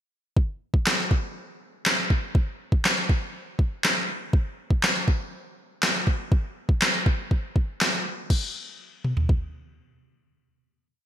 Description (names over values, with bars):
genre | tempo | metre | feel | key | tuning
pop | 121 BPM | 4/4 | straight | none | none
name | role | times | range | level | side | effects
smooth R&B drum kit | drums | 0.4-9.4 s | crash cymbal, handclaps, kick drum, snare drum, toms | -22 LUFS | equal | gated reverb
room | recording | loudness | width
light reverb, digital ambience | bright 1980s-style digital production | -22 LUFS | side -11 dB against mid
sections
0.4-8.3 verse; 8.3-11.1 final hit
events
none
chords
none